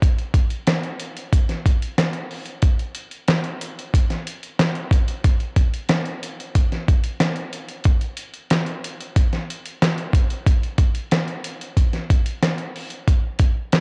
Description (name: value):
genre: indie pop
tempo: 92 BPM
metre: 4/4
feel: straight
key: none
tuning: none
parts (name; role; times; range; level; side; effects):
- dusty soul sampler-style drum kit; drums; 0.0-13.8 s; hi-hat, kick drum, snare drum; -21 LUFS; equal; cassette tape
room: light reverb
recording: home recording on cassette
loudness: -21 LUFS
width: mono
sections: 0.0-13.1 A section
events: none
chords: none